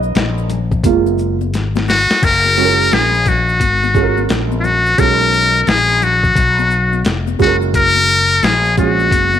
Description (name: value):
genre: hip hop, jazz-hop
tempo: 87 BPM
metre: 4/4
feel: swing 62% on 16ths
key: F# major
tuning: A4 = 435 Hz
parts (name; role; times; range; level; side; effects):
- dark upright piano; accompaniment; 0.0-9.3 s; G#3 to D#5; -19 LUFS; right 10 dB; none
- fretless electric bass; bass; 0.0-9.4 s; E#1 to B1; -18 LUFS; left 2 dB; lush chorus
- maracas and congas; percussion; 0.0-9.4 s; none; -27 LUFS; left 16 dB; none
- boom bap sampler-style drum kit; drums; 0.2-9.3 s; crash cymbal, hi-hat, kick drum, shaker, snare drum; -18 LUFS; left 2 dB; none
- trumpet with metal mute; melody; 1.9-9.4 s; E#4 to A#4; -13 LUFS; left 2 dB; none
room: light reverb, small room reverb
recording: 1960s-style stereo with parts hard left and right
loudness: -11 LUFS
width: side -10 dB against mid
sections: 0.0-2.2 A section; 2.2-9.4 B section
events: upright piano solo 0.0-2.2; drum fill 1.5-2.2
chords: 0.0 Bmaj7; 0.8 F#maj7; 2.2 F#add9; 5.0 B5; 7.4 F#add9